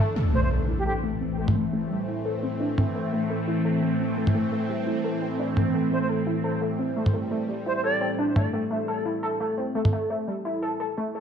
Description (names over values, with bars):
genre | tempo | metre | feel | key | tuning
half-time drum and bass | 172 BPM | 4/4 | swing 55% on 16ths, half-time | A minor | A4 = 440 Hz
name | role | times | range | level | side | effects
bowed-like drone | sustained chords | 0.0-9.9 s | A2 to D4 | -28 LUFS | equal | built-in reverb, phaser
warbly dusty pluck | arpeggios | 0.0-11.2 s | G3 to A4 | -28 LUFS | left 1 dB | lush chorus, tape echo
impact | sound effects | 0.2-1.6 s | none | -27 LUFS | equal | none
silver concert flute | melody | 0.3-0.9, 5.9-8.1 s | G4 to D5 | -31 LUFS | right 2 dB | vintage 12-bit sampler grit, tape echo
electronic toms | drums | 1.5-9.9 s | none | -24 LUFS | right 1 dB | overdrive
room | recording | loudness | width
moderate digital room reverb, RT60 1.0 s | dark, warm production | -23 LUFS | side -8 dB against mid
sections
0.2-11.2 A section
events
impact 0.2-1.6; filter sweep on synth pluck 0.2-11.2; break 9.9-11.2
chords
0.2 Am